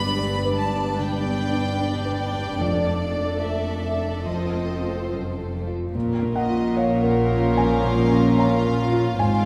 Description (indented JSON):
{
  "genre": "cinematic, emotional film score for orchestra",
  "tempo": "74 BPM",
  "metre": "4/4",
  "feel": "rubato",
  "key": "Bb minor from 5.9 s",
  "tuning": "A4 = 440 Hz",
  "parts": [
    { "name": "warm symphonic violin section", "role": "melody", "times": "0.0-9.5 s", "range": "Db5 to B5", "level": "-32 LUFS", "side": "equal", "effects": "none" },
    { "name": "warm studio violin section", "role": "second line", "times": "0.0-9.5 s", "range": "F4 to D5", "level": "-31 LUFS", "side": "equal", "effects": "none" },
    { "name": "dark symphonic viola section", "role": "accompaniment", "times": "0.0-9.5 s", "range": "F3 to F4", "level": "-31 LUFS", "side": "equal", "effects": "none" },
    { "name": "felt-muted upright piano", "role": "accompaniment", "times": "0.0-9.5 s", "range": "F2 to Bb5", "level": "-27 LUFS", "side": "equal", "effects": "none" },
    { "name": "dark symphonic double bass section", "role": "bass", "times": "0.0-9.5 s", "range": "F1 to Bb1", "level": "-30 LUFS", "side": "equal", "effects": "none" },
    { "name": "warm symphonic cello section", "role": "bass", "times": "0.0-9.5 s", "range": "F2 to Bb2", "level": "-32 LUFS", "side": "equal", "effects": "none" }
  ],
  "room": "wet scoring stage reverb, RT60 1.7 s",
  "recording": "recorded in a church or concert hall",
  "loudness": "-23 LUFS",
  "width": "mono",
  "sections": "0.0-5.9 A section; 5.9-9.5 A section",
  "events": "none",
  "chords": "0.0 G; 2.6 Dm/F; 4.3 F7; 5.9 Bbm"
}